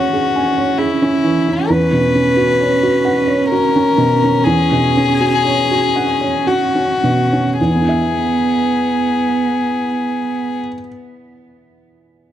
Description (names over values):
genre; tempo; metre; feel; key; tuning
neoclassical piano and strings; 53-68 BPM; 3/4; rubato; E lydian; A4 = 441 Hz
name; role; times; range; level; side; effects
rich violin; melody; 0.0-10.6 s; E4 to B4; -17 LUFS; left 5 dB; none
warm cello; second line; 0.0-10.6 s; B3 to C#4; -19 LUFS; right 5 dB; tape echo
felt-muted upright piano; accompaniment; 0.0-12.3 s; E2 to G#5; -17 LUFS; right 2 dB; none
room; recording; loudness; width
moderate spring reverb, RT60 1.4 s, small room ambience; dark, warm production; -13 LUFS; side -11 dB against mid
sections
0.0-7.6 A section; 7.6-10.9 B section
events
slowing down 0.3-7.6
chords
0.0 C#m/E; 1.7 Bsus2/E; 7.6 E